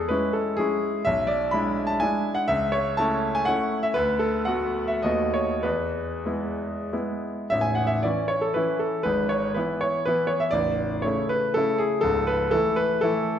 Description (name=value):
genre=classical, romantic triple-time dance for piano with dotted rhythms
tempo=89-133 BPM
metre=3/4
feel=rubato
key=A major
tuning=A4 = 440 Hz
part: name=bright grand piano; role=solo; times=0.0-13.4 s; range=A0 to B5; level=-22 LUFS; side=equal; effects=none
room=moderate scoring stage reverb, RT60 1.7 s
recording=none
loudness=-22 LUFS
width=side -9 dB against mid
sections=0.0-7.5 A section; 7.5-13.4 B section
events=none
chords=0.0 C#m/E; 1.1 E7/B; 2.5 A/C#; 4.0 Bm7/D; 5.1 B7/D#; 5.6 E; 7.5 A; 9.1 E/G#; 10.5 A; 12.0 A/C#